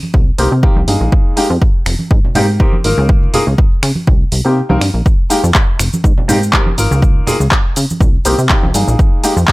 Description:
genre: filtered disco house.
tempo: 122 BPM.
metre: 4/4.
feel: swing 54% on 16ths.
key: unclear.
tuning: A4 = 440 Hz.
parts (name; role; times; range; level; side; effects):
egg shaker and congas; percussion; 0.0-9.5 s; none; -21 LUFS; right 2 dB; sidechain pumping on perc, low-pass filter on perc.
plucky analog bass; bass; 0.1-9.4 s; F1 to Db3; -14 LUFS; equal; sidechain pumping, low-pass filter.
electronic kick drum; drums; 0.1-9.5 s; none; -12 LUFS; equal; none.
clear baby grand piano; accompaniment; 0.4-9.3 s; Ab3 to Bb4; -16 LUFS; left 1 dB; phaser, sidechain pumping, low-pass filter.
punchy analog drum machine; drums; 0.4-9.5 s; finger snaps, handclaps, hi-hat, shaker; -18 LUFS; equal; none.
room: little or no reverb.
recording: none.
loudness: -10 LUFS.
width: side -20 dB against mid.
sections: 0.0-9.5 A section.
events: filter sweep 0.0-9.5; kick drops out 4.6-5.1.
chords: 0.1 Cm7; 1.1 Fm11; 2.1 Abmaj7; 3.1 Db69; 4.1 Cm7; 5.1 N.C.; 6.0 Abmaj7; 7.0 Db69; 8.0 Cm7; 9.0 Fm11.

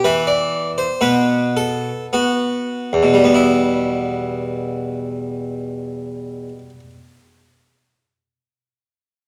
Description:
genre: classical, baroque-style suite movement for harpsichord.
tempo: 48-64 BPM.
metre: 4/4.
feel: rubato.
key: E minor.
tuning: A4 = 438 Hz.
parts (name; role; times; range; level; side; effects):
harpsichord; solo; 0.0-6.9 s; E2 to D5; -19 LUFS; equal; none.
room: wet recital hall reverb, RT60 1.7 s.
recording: close, detailed microphones.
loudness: -19 LUFS.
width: mono.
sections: 0.0-3.3 A section; 3.3-8.0 B section.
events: slowing down 0.0-3.3.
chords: 0.0 E5; 1.0 N.C.; 3.3 Em.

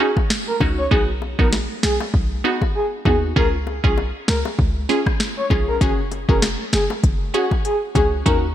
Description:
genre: dancehall.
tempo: 98 BPM.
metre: 4/4.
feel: swing 56% on 16ths.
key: unclear.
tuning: A4 = 439 Hz.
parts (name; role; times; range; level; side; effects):
breathy flute-like synth lead; melody; 0.0-8.4 s; F#4 to Db5; -24 LUFS; equal; chorus, tremolo, digital delay.
wavetable chord stab; accompaniment; 0.0-8.5 s; B3 to Ab4; -24 LUFS; right 2 dB; sidechain pumping.
bongos; percussion; 0.0-8.1 s; none; -33 LUFS; left 9 dB; none.
afro-pop drum kit; drums; 0.2-8.4 s; hi-hat, kick drum, rim click, snare drum; -20 LUFS; equal; vintage 12-bit sampler grit, gated reverb.
short 808-style bass; bass; 0.6-8.5 s; F1 to D#2; -22 LUFS; equal; none.
room: light reverb, digital ambience.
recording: bright 1980s-style digital production.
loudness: -17 LUFS.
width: side -11 dB against mid.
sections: 0.0-8.5 A section.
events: break 0.0-5.8.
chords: 0.0 Ebm7; 0.9 B; 3.4 Db; 5.8 Gbsus2.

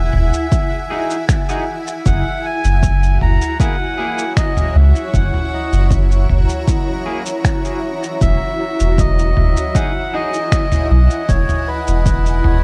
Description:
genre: ambient dub.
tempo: 78 BPM.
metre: 4/4.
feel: straight.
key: F# mixolydian.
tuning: A4 = 440 Hz.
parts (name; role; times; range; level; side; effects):
melodica; melody; 0.0-12.6 s; B4 to A#5; -26 LUFS; equal; dub echo.
granular cloud pad; sustained chords; 0.0-12.6 s; E4 to A#5; -26 LUFS; equal; built-in reverb.
soft dub sub bass; bass; 0.0-12.6 s; E1 to C#2; -16 LUFS; equal; none.
lo-fi sampler-style drum kit; drums; 0.1-12.6 s; finger snaps, shaker, toms; -24 LUFS; equal; dub echo.
electronic kick drum; drums; 0.5-12.2 s; none; -20 LUFS; equal; overdrive.
clean electric guitar; stabs; 0.9-10.4 s; A#3 to G#4; -30 LUFS; equal; analog chorus, dub echo.
room: little or no reverb.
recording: dark, warm production.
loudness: -16 LUFS.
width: mono.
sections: 0.0-12.6 A section.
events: none.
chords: 0.0 Emaj9; 2.1 F#7; 8.2 Emaj9.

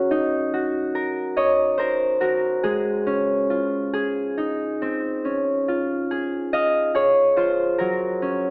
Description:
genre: children's music, lullaby.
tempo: 47 BPM (dotted quarters).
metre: 6/8.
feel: rubato.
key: Db major.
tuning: A4 = 440 Hz.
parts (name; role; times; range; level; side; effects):
concert harp; solo; 0.0-8.5 s; Gb3 to F5; -22 LUFS; equal; none.
room: moderate scoring stage reverb, RT60 1.5 s.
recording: AM radio sound.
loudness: -22 LUFS.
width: mono.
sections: 0.0-8.5 A section.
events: none.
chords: 0.1 Ebm; 2.6 Db/Ab; 3.9 Ab; 5.2 Db; 7.8 Gb.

